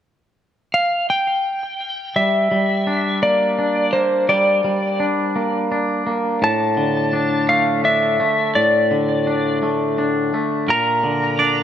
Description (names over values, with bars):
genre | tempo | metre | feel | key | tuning
rock | 56 BPM (dotted quarters) | 6/8 | straight | G dorian | A4 = 440 Hz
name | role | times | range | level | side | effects
clean lap steel guitar | melody | 0.7-11.6 s | C5 to Bb5 | -18 LUFS | left 1 dB | analog delay
twangy electric guitar | arpeggios | 2.2-11.6 s | A2 to D4 | -19 LUFS | equal | analog delay
twangy electric guitar | arpeggios | 10.7-11.6 s | Bb4 to D5 | -21 LUFS | right 5 dB | wide subtle chorus, analog delay
room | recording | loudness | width
moderate scoring stage reverb, RT60 1.9 s | none | -16 LUFS | side -10 dB against mid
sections
0.0-2.2 A section; 2.2-11.6 B section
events
none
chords
0.0 N.C.; 2.2 Gm; 6.4 D5/A; 10.7 Bb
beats
| 0.04 1.11 | 2.17 3.23 | 4.30 5.36 | 6.43 7.49 | 8.55 9.62 | 10.68